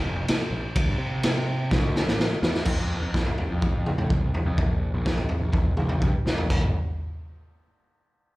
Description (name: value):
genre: quiet-loud alternative rock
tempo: 125 BPM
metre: 4/4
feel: straight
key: unclear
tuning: A4 = 440 Hz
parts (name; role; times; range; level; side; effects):
- fuzz picked electric bass; bass; 0.0-6.7 s; F1 to C3; -28 LUFS; equal; overdrive
- raw garage drum kit; drums; 0.3-6.6 s; crash cymbal, kick drum, ride cymbal, snare drum, toms; -24 LUFS; equal; none
room: little or no reverb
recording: live gig heard through the venue's PA, club reverb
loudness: -22 LUFS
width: side -19 dB against mid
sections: 0.0-2.7 A section; 2.7-6.5 B section; 6.5-8.4 C section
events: drum fill 1.7-2.7, 6.3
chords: none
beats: 0.28 | 0.76 1.24 1.71 2.19 | 2.67 3.15 3.62 4.10 | 4.58 5.06 5.54 6.02 | 6.50